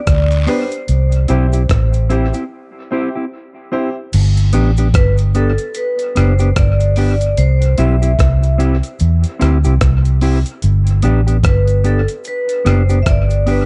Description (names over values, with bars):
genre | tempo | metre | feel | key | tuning
roots reggae | 74 BPM | 4/4 | swing 60% on 16ths | G major | A4 = 440 Hz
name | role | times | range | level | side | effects
vibraphone with medium hard mallets | melody | 0.0-13.7 s | A4 to E5 | -24 LUFS | equal | dub echo
vintage muted fingered electric bass | bass | 0.1-13.7 s | F#1 to E2 | -15 LUFS | equal | none
breakbeat sampler-style drum kit | drums | 0.1-13.7 s | crash cymbal, hi-hat, kick drum, rim click | -21 LUFS | equal | none
cabasa and guiro | percussion | 0.1-13.7 s | none | -38 LUFS | equal | none
mellow electric guitar | accompaniment | 0.5-13.6 s | B3 to G4 | -24 LUFS | equal | dub echo, plate reverb
warm upright piano | stabs | 0.5-3.9 s | B3 to C5 | -26 LUFS | equal | plate reverb
room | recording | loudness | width
little or no reverb | dark, warm production, nothing above 10.4 kHz | -14 LUFS | mono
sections
0.0-4.1 A section; 4.1-13.7 B section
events
break 2.5-4.1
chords
0.0 G; 0.9 C; 4.1 G; 7.4 C; 10.6 G